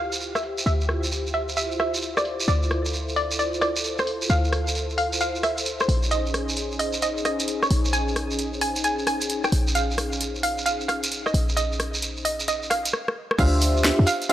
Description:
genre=UK garage, two-step garage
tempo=132 BPM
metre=4/4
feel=swing 65% on 16ths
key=unclear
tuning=A4 = 441 Hz
part: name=hollow square pluck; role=melody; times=0.0-14.3 s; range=C5 to Ab5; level=-26 LUFS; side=right 1 dB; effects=wide subtle chorus, analog delay
part: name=warm analog pad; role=sustained chords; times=0.0-14.3 s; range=Db4 to E5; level=-30 LUFS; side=left 1 dB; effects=chorus, sidechain pumping
part: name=short 808-style bass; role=bass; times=0.0-14.0 s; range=Bb1 to F2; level=-25 LUFS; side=equal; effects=none
part: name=garage drum kit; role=drums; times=0.1-14.3 s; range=crash cymbal, hi-hat, rim click, snare drum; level=-27 LUFS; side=equal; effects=low-pass filter on hats, low-pass filter on snare, low-pass filter on perc, low-pass filter on cymbals
part: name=shekere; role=percussion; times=0.1-14.3 s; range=none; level=-30 LUFS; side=right 3 dB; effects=none
part: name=FM electric piano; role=stabs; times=13.4-14.3 s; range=D4 to E5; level=-23 LUFS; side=equal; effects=chorus, analog delay
part: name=electronic kick drum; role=drums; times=13.4-13.5 s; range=none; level=-22 LUFS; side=equal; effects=none
room=light reverb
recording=dry, gritty hardware recording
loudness=-21 LUFS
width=side -12 dB against mid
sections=0.0-13.4 A section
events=filter sweep on drum 0.0-13.4; drum fill 12.9-13.4; stop 12.9-13.4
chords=0.0 Dm11; 5.9 Bbm11; 13.4 Dm11

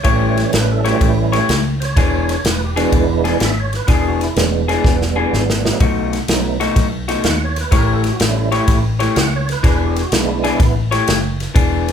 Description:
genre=electric blues shuffle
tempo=125 BPM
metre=4/4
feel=swing 67% on 8ths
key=E mixolydian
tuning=A4 = 441 Hz
part: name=tonewheel organ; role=accompaniment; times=0.0-10.8 s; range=E3 to F#5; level=-21 LUFS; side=right 7 dB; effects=slow rotary speaker, overdrive, chorus vibrato
part: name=electric guitar through a small old amp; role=riff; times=0.0-11.9 s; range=B2 to C#5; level=-19 LUFS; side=left 4 dB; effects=none
part: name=fingered electric bass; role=bass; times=0.0-11.9 s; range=E1 to D#2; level=-20 LUFS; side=equal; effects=none
part: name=natural country drum kit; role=drums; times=0.0-11.9 s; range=kick drum, ride cymbal, snare drum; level=-18 LUFS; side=equal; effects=none
room=moderate large studio reverb, RT60 0.8 s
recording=band playing live in one room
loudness=-14 LUFS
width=side -8 dB against mid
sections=0.0-11.9 A section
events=drum fill 4.8-5.8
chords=0.0 A7; 2.0 E7; 5.8 B7; 7.7 A7; 9.6 E7; 10.6 A7

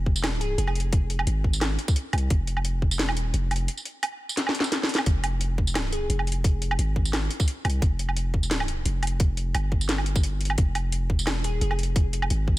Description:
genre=half-time drum and bass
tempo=174 BPM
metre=4/4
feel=swing 54% on 16ths, half-time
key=F minor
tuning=A4 = 440 Hz
part: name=long sustained 808-style bass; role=bass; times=0.0-12.6 s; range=F1 to C2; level=-26 LUFS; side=equal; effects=tube saturation
part: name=electronic kick drum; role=drums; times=0.1-2.9, 5.1-12.6 s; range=none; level=-22 LUFS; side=equal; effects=none
part: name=drum and bass drum kit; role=drums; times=0.2-12.4 s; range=hi-hat, snare drum, tambourine, woodblock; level=-28 LUFS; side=right 1 dB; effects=none
part: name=glassy wavetable pluck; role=melody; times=0.4-0.7, 5.9-6.4, 11.4-11.8 s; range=Ab4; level=-35 LUFS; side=left 2 dB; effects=chorus, ping-pong delay
room=digital ambience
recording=none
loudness=-23 LUFS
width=side -17 dB against mid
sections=0.0-12.6 A section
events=drum fill 4.4-5.1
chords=0.0 F5

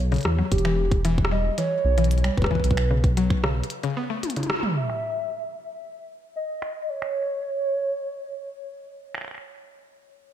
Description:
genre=IDM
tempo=113 BPM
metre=4/4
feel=straight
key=unclear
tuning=A4 = 440 Hz
part: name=dark detuned saw bass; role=bass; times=0.0-3.6 s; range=E1 to E2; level=-22 LUFS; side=equal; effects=none
part: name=mallet-like synth pluck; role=arpeggios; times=0.1-4.4 s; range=C#3 to B3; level=-28 LUFS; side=left 4 dB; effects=chorus, tape echo
part: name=glitchy drum kit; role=drums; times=0.1-9.4 s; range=finger snaps, hi-hat, rim click, toms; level=-30 LUFS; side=equal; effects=low-pass filter on snare, small room ambience, low-pass filter on hats, low-pass filter on toms, tape echo
part: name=warbly nostalgic lead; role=melody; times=0.5-8.7 s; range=G4 to E5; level=-29 LUFS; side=right 2 dB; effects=chorus, tremolo, ping-pong delay
part: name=electronic kick drum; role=drums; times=0.5-3.4 s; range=none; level=-22 LUFS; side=equal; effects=small room ambience
room=light reverb, digital ambience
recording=dark, warm production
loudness=-22 LUFS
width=side -10 dB against mid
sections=0.0-4.8 A section; 4.8-10.3 B section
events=break 3.7-4.8; drum fill 4.2-4.8; band accent 4.5; filter sweep on drum 4.8-10.3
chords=0.0 Bsus24; 0.5 Em; 2.6 Bsus2; 4.8 N.C.

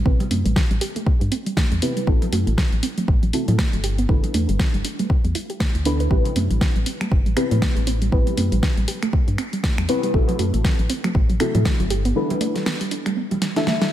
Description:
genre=deep house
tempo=119 BPM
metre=4/4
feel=swing 58% on 16ths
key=A dorian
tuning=A4 = 440 Hz
part: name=deep mellow chord stab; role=stabs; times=0.0-13.9 s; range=C4 to E5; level=-26 LUFS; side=left 1 dB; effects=chorus, phaser, sidechain pumping, analog delay
part: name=organ-like FM bass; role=bass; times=0.0-12.1 s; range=G1 to A2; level=-22 LUFS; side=equal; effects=sidechain pumping
part: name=soft round pluck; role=arpeggios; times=0.1-13.9 s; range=F#3 to B4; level=-27 LUFS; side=right 2 dB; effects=chorus, sidechain pumping, analog delay
part: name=electronic kick drum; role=drums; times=0.1-11.8 s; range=none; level=-20 LUFS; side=equal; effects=none
part: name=deep house drum kit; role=drums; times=0.2-13.9 s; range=finger snaps, hi-hat, snare drum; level=-27 LUFS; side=equal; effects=none
part: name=congas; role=percussion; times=0.2-13.8 s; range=none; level=-31 LUFS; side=right 3 dB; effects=none
room=light reverb, digital ambience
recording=none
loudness=-18 LUFS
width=side -12 dB against mid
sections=0.0-13.9 A section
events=filter sweep on synth stab 0.0-13.9; filter sweep on synth arpeggio sound 0.0-13.9; break 12.2-13.9; drum fill 13.4-13.9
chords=0.0 Am7; 2.1 Am6; 3.8 G6; 6.1 Am7; 10.1 Am6; 11.9 G6

